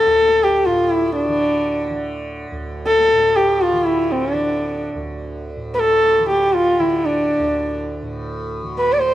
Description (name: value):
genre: indian classical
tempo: 123 BPM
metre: 3/4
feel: straight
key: D raga bhimpalasi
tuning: A4 = 443 Hz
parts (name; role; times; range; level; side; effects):
- dark sarangi; melody; 0.0-9.1 s; D4 to D5; -16 LUFS; equal; plate reverb
- tanpura; drone; 0.0-9.1 s; D2 to D3; -28 LUFS; right 1 dB; none
room: moderate small room reverb, RT60 0.5 s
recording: dark, warm production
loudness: -15 LUFS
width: side -13 dB against mid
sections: 0.0-9.1 A section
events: none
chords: none